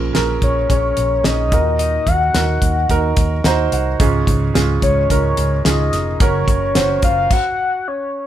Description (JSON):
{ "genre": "piano-driven pop", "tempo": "109 BPM", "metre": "4/4", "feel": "straight", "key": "Db major", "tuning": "A4 = 441 Hz", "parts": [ { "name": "warm concert grand piano", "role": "accompaniment", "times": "0.0-7.3 s", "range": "Ab2 to Bb5", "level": "-20 LUFS", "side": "right 5 dB", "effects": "none" }, { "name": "vintage muted fingered electric bass", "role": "bass", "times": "0.0-7.3 s", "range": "F1 to Eb2", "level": "-20 LUFS", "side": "equal", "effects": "none" }, { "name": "damped 70s drum kit", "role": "drums", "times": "0.1-7.4 s", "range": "crash cymbal, hi-hat, kick drum, snare drum", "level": "-18 LUFS", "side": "equal", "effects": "none" }, { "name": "soft octave-layered synth lead", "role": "melody", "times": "0.4-8.3 s", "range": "Db5 to Gb5", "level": "-18 LUFS", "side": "left 3 dB", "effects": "chorus" } ], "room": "light reverb", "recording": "band playing live in one room", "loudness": "-14 LUFS", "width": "side -11 dB against mid", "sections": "0.0-8.3 A section", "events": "grand piano fill 3.2-4.0; stop 7.3-8.3", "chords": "0.0 Bbm7; 1.5 Ebm; 4.0 Db; 6.2 Gb", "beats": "0.15 0.70 1.25 | 1.80 2.35 2.90 3.45 | 4.00 4.55 5.11 5.66 | 6.21 6.76 7.31 7.86" }